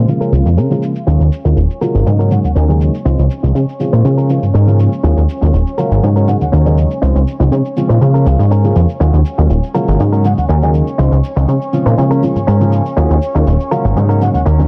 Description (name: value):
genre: filtered disco house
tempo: 121 BPM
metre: 4/4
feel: straight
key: Eb dorian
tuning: A4 = 435 Hz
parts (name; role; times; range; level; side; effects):
- dark grand piano; accompaniment; 0.0-14.7 s; Db3 to F4; -20 LUFS; equal; phaser, low-pass filter
- bright studio violin section; sustained chords; 0.0-14.7 s; Db4 to F5; -29 LUFS; equal; low-pass filter
- direct-recorded clean electric guitar; riff; 0.0-14.7 s; Db4 to C5; -23 LUFS; equal; low-pass filter
- plucky analog bass; bass; 0.0-14.7 s; Eb1 to Db3; -13 LUFS; equal; low-pass filter
- shaker; drums; 0.1-14.7 s; none; -47 LUFS; equal; overdrive, low-pass filter on perc, small room reverb
- mellow silver concert flute; melody; 2.3-2.8, 6.3-6.5, 10.2-10.7, 14.2-14.4 s; Gb5 to Ab5; -25 LUFS; equal; low-pass filter
room: little or no reverb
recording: dense, heavily limited modern master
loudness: -13 LUFS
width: mono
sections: 0.0-14.7 A section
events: filter sweep 0.0-14.7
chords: 0.1 Bbm7/Db; 1.1 Ebm11; 1.8 Ab9sus4; 3.1 Dbmaj9; 4.0 Bbm7; 5.0 Ebm11; 5.8 Ab9sus4; 7.0 Dbmaj9; 8.0 Bbm7/Db; 9.0 Ebm11; 9.8 Ab9sus4; 11.0 Dbmaj9; 12.0 Bbm7; 13.0 Ebm11; 13.7 Ab9sus4